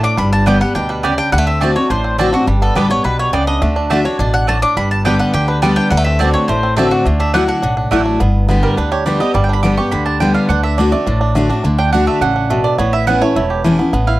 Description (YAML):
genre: bluegrass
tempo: 209 BPM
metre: 4/4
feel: straight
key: D major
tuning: A4 = 441 Hz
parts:
  - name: mandolin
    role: melody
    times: 0.0-7.9 s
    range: F#4 to D6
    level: -18 LUFS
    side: left 1 dB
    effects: none
  - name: picked steel-string acoustic guitar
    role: accompaniment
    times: 0.0-14.2 s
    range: E2 to G4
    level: -16 LUFS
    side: left 2 dB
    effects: none
  - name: bluegrass banjo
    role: arpeggios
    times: 0.0-14.2 s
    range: D3 to G4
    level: -20 LUFS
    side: right 3 dB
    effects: none
  - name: upright bass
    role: bass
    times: 0.0-14.2 s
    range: E1 to D2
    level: -18 LUFS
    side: equal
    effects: none
  - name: mandolin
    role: stabs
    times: 0.5-14.2 s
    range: A3 to D6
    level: -18 LUFS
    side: right 5 dB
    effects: none
room: light reverb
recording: dry, close 1970s-style studio recording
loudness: -12 LUFS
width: side -17 dB against mid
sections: 0.0-8.2 A section; 8.2-14.2 B section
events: mandolin solo 8.2-14.2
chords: 0.2 G; 1.3 D7; 2.5 G; 3.6 D; 4.8 G; 5.9 D7; 7.1 Dadd9; 8.2 G; 10.5 D; 12.8 Aadd9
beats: | 0.18 0.47 0.75 1.04 | 1.32 1.61 1.90 2.19 | 2.47 2.76 3.04 3.33 | 3.62 3.90 4.19 4.48 | 4.76 5.05 5.34 5.62 | 5.91 6.20 6.48 6.77 | 7.06 7.34 7.63 7.92 | 8.20 8.49 8.77 9.06 | 9.35 9.63 9.92 10.21 | 10.49 10.78 11.07 11.35 | 11.64 11.93 12.21 12.50 | 12.79 13.07 13.36 13.64 | 13.93